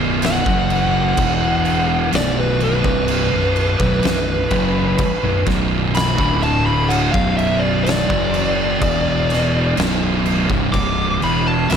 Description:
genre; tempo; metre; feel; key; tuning
stoner and doom metal; 63 BPM; 4/4; straight; B minor; A4 = 439 Hz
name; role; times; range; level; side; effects
thick fuzz guitar; riff; 0.0-11.8 s; B1 to F#3; -22 LUFS; left 10 dB; distortion
thick fuzz guitar; riff; 0.0-11.8 s; B1 to F#3; -21 LUFS; right 8 dB; distortion
fuzz fingered electric bass; bass; 0.0-11.8 s; B0 to F#1; -24 LUFS; equal; overdrive
oversized low-tuned drum kit; drums; 0.2-11.8 s; crash cymbal, kick drum, snare drum; -21 LUFS; equal; none
fuzz lead guitar; melody; 0.3-11.8 s; B4 to D6; -21 LUFS; equal; distortion, slapback echo
room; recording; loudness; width
studio ambience; none; -15 LUFS; side -7 dB against mid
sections
0.0-11.8 A section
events
lead electric guitar solo 0.0-11.8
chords
0.0 B5; 1.2 E5; 2.1 B5; 6.2 D5; 7.1 Bm; 8.8 E5; 9.8 Bm

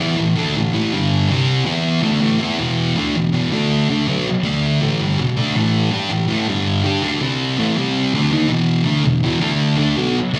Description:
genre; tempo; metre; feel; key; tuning
rock; 162 BPM; 4/4; straight; unclear; A4 = 440 Hz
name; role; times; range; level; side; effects
thick fuzz guitar; solo; 0.0-10.4 s; E2 to G4; -18 LUFS; equal; distortion, slapback echo
room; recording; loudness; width
wet club reverb, RT60 0.5 s; live gig heard through the venue's PA, club reverb; -18 LUFS; mono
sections
0.0-2.6 A section; 2.6-8.5 B section; 8.5-10.4 C section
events
none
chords
0.0 A5; 0.9 G5; 1.3 C5; 1.7 E5; 2.0 A5; 2.6 E5; 3.5 D5; 3.9 N.C.; 4.4 D5; 4.8 E5; 5.5 A5; 6.5 G5; 6.8 Dsus4; 7.2 C5; 7.6 A5; 7.8 C5; 8.1 A#add11/D; 8.5 E5; 9.4 D5; 9.8 N.C.

